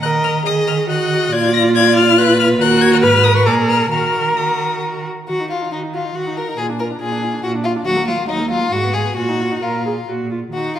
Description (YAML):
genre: quick classical-period movement for string quartet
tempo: 129-144 BPM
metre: 3/4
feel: rubato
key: Eb minor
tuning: A4 = 441 Hz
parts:
  - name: warm violin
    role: melody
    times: 0.0-10.8 s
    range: Eb5 to Bb6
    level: -21 LUFS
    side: left 9 dB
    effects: none
  - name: rich violin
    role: second line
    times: 0.0-10.8 s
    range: Eb4 to Eb5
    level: -21 LUFS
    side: left 2 dB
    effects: none
  - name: warm viola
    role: accompaniment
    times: 0.0-10.8 s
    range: Gb3 to Cb5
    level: -18 LUFS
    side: right 1 dB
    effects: none
  - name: warm cello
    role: bass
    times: 0.0-10.8 s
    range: Eb2 to Eb3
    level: -20 LUFS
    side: right 3 dB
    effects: none
room: wet recital hall reverb, RT60 1.5 s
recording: none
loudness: -14 LUFS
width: side -10 dB against mid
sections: 0.0-5.3 A section; 5.3-10.8 A section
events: none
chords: 0.0 Ebm; 1.3 Bb; 2.6 Ebm; 3.0 Abm; 3.5 Bb7(no3); 3.9 Ebm; 6.6 Bb7; 7.9 Ebm; 8.7 Abm; 9.2 Bbsus4; 10.1 Bb5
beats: | 0.02 0.46 0.89 | 1.32 1.75 2.19 | 2.61 3.03 3.47 | 3.92 4.37 4.83 | 5.29 5.73 6.16 | 6.58 7.01 7.44 | 7.86 8.29 8.72 | 9.17 9.63 10.09 | 10.54